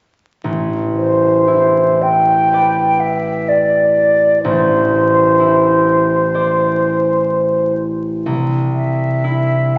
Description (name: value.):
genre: classical, impressionist duo for flute and harp.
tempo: 54-63 BPM.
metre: 4/4.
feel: rubato.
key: A minor.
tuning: A4 = 440 Hz.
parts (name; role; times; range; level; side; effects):
concert harp; accompaniment; 0.4-9.8 s; A1 to D5; -19 LUFS; equal; none.
mellow concert flute; melody; 1.0-9.8 s; C5 to G5; -16 LUFS; equal; none.
room: wet concert hall reverb, RT60 2.0 s.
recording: vinyl crackle, nothing above 7.6 kHz.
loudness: -15 LUFS.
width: mono.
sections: 0.4-9.8 A section.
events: none.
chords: 0.4 Am11; 4.4 Amadd11; 8.3 Cadd9.